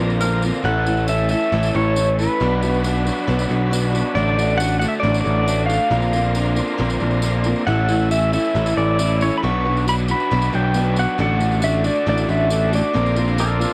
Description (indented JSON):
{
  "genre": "folk rock and heartland rock",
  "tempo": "136 BPM",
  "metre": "4/4",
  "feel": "straight",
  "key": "D major",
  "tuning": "A4 = 439 Hz",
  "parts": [
    { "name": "clean lap steel guitar", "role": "second line", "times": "0.0-0.4, 13.4-13.7 s", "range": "F4 to B4", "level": "-27 LUFS", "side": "equal", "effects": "cassette tape" },
    { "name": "picked steel-string acoustic guitar", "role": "accompaniment", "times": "0.0-13.7 s", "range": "A2 to B4", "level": "-27 LUFS", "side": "equal", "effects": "cassette tape" },
    { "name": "tonewheel organ", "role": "sustained chords", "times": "0.0-13.7 s", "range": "F#3 to Bb5", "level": "-32 LUFS", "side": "equal", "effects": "slow rotary speaker, cassette tape" },
    { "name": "crunchy overdriven guitar", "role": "riff", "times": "0.0-13.7 s", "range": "A2 to A4", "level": "-29 LUFS", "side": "equal", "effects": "cassette tape" },
    { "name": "modern bright picked electric bass", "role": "bass", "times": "0.0-13.6 s", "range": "A1 to B1", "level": "-23 LUFS", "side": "equal", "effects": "none" },
    { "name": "tambourine", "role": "percussion", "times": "0.1-13.7 s", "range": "none", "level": "-37 LUFS", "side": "equal", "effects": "none" },
    { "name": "pedal steel guitar", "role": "melody", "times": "0.6-13.7 s", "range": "B4 to C#6", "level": "-24 LUFS", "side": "equal", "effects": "cassette tape" }
  ],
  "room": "little or no reverb",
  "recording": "home recording on cassette",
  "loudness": "-19 LUFS",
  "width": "mono",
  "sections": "0.6-13.7 A section",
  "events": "none",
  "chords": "0.0 Bbadd9; 0.6 A; 2.4 Bm; 4.2 D/A; 5.9 Bbadd9; 7.7 A; 9.4 Bm; 11.2 D/A; 12.9 Bbadd9",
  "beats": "0.21 | 0.65 1.09 1.52 1.96 | 2.40 2.84 3.28 3.71 | 4.15 4.59 5.03 5.47 | 5.91 6.35 6.79 7.23 | 7.67 8.11 8.55 8.99 | 9.43 9.87 10.31 10.75 | 11.19 11.63 12.07 12.51 | 12.95 13.39"
}